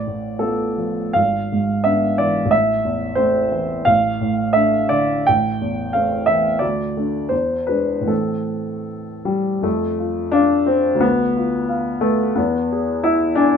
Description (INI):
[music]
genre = classical, romantic character piece for solo piano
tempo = 73-93 BPM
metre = 2/4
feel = rubato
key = A minor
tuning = A4 = 437 Hz
[part]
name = warm grand piano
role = solo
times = 0.0-13.6 s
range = G#1 to G#5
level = -17 LUFS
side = equal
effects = none
[sound]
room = moderate studio reverb, RT60 0.8 s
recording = minimal, uncompressed stereo recording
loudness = -17 LUFS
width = side -7 dB against mid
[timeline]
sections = 0.0-9.6 A section; 9.6-13.6 B section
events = none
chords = 0.0 Bm7b5/A; 1.2 E7/G#; 2.5 Am; 3.9 Dm/A; 5.3 Am; 6.6 D5; 7.3 E7; 8.1 Am; 9.6 F; 11.0 Bdim/D; 12.4 E